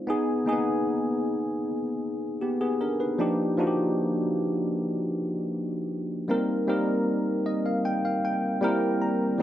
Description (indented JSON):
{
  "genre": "soul",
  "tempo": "77 BPM",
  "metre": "4/4",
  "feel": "straight",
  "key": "unclear",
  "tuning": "A4 = 440 Hz",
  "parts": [
    { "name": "bell-like tine electric piano", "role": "solo", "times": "0.0-9.4 s", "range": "F3 to Bb5", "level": "-24 LUFS", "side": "equal", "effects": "analog chorus" }
  ],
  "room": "light reverb",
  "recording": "none",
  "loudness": "-24 LUFS",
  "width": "side -12 dB against mid",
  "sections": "0.0-9.4 A section",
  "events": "tine electric piano fill 7.1-9.4",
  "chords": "0.1 Abm; 3.2 Ebmaj9; 6.3 Cm7; 8.6 C7"
}